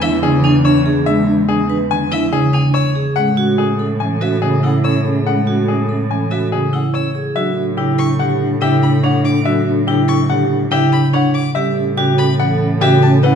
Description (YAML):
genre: classical, minimalist pattern music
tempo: 143 BPM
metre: 5/4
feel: straight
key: unclear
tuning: A4 = 440 Hz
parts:
  - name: bright baby grand piano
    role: melody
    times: 0.0-13.4 s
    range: G4 to G#5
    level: -21 LUFS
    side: left 8 dB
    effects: none
  - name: mellow hollow wooden-headed alto flute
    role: second line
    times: 0.0-13.4 s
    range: C#4 to D4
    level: -21 LUFS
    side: left 2 dB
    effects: none
  - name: marimba with soft mallets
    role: accompaniment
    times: 0.0-13.1 s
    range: C#3 to G#3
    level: -17 LUFS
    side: equal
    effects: none
  - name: vibraphone with hard mallets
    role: arpeggios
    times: 0.0-13.4 s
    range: D4 to B4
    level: -20 LUFS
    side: right 5 dB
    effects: none
  - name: warm violin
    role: arpeggios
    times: 0.0-13.4 s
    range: E5 to E6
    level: -26 LUFS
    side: left 3 dB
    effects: none
  - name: warm cello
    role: bass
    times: 0.0-13.4 s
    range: E2 to A2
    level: -22 LUFS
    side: right 2 dB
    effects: none
room: wet recital hall reverb, RT60 1.7 s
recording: recorded in a church or concert hall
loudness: -13 LUFS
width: side -7 dB against mid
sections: 0.0-7.4 A section; 7.4-13.4 B section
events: none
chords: 0.0 E7; 3.2 Amaj7; 7.4 Em9/A; 11.6 A13